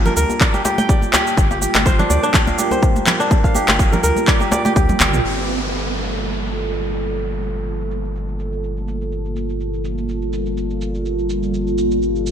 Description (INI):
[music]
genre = afro house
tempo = 124 BPM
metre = 4/4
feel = swing 55% on 16ths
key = G minor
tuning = A4 = 440 Hz
[part]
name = dark analog pad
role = sustained chords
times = 0.0-12.3 s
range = G3 to A5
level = -23 LUFS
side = right 1 dB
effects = chorus, phaser, sidechain pumping
[part]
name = kora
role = arpeggios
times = 0.0-6.2 s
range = D4 to G5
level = -20 LUFS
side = equal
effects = sidechain pumping, digital delay
[part]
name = round analog bass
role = bass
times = 0.0-12.3 s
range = G1 to D2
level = -24 LUFS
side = equal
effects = sidechain pumping
[part]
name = house drum kit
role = drums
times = 0.1-12.3 s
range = cabasa, handclaps, toms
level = -20 LUFS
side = equal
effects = low-pass filter on perc, low-pass filter on snare, low-pass filter on toms, low-pass filter on room, gated reverb
[part]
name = congas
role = percussion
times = 0.1-5.0 s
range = none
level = -25 LUFS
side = right 2 dB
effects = none
[part]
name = djembe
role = percussion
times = 0.3-5.2 s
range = none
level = -27 LUFS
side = left 2 dB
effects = none
[part]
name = electronic kick drum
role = drums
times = 0.4-4.9 s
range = none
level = -16 LUFS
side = equal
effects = none
[part]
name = downlifter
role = sound effects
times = 5.2-9.1 s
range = none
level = -27 LUFS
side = right 2 dB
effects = none
[sound]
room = moderate plate reverb, RT60 2.7 s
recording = bright 1980s-style digital production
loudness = -16 LUFS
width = side -8 dB against mid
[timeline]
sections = 0.0-5.2 A section; 5.2-12.3 B section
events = drum fill 4.9-5.2; filter sweep on drum 5.2-12.3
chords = 0.0 Gm9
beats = 0.41 0.89 | 1.37 1.86 2.34 2.83 | 3.31 3.79 4.28 4.76 | 5.25 5.73 6.21 6.70 | 7.18 7.66 8.15 8.63 | 9.12 9.60 10.08 10.57 | 11.05 11.54 12.02